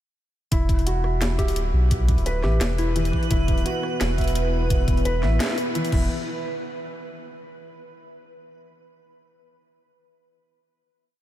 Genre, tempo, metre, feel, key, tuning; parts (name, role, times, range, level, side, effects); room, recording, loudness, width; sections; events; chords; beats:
half-time drum and bass; 172 BPM; 4/4; swing 54% on 16ths, half-time; A4 = 440 Hz
felt-muted upright piano; arpeggios; 0.5-6.1 s; E3 to E5; -29 LUFS; right 1 dB; vintage 12-bit sampler grit, diffuse ambient delay
saturated sub bass; bass; 0.5-6.1 s; D1 to B1; -22 LUFS; equal
drum and bass drum kit; drums; 0.5-6.0 s; crash cymbal, hi-hat, rim click, snare drum; -31 LUFS; equal; overdrive, studio reverb
electronic kick drum; drums; 0.5-6.0 s; -23 LUFS; equal; studio reverb
backwards swelling texture; texture; 1.6-6.1 s; B4; -35 LUFS; right 2 dB; built-in reverb, lush chorus
soft struck synth lead; melody; 1.4-3.1 s; E4 to G4; -33 LUFS; left 2 dB; chorus, tremolo, diffuse ambient delay
dark analog pad; sustained chords; 3.3-6.1 s; B3 to B4; -31 LUFS; left 1 dB; chorus, vintage 12-bit sampler grit, sidechain pumping
light reverb, digital ambience; -20 LUFS; side -13 dB against mid
0.5-6.1 drop; 6.1-7.5 final hit
drop 0.5-6.1
0.5 E5; 6.1 N.C.
| 0.52 0.86 1.21 1.56 | 1.91 2.26 2.61 2.96 | 3.31 3.66 4.00 4.35 | 4.70 5.05 5.40 5.75 | 6.10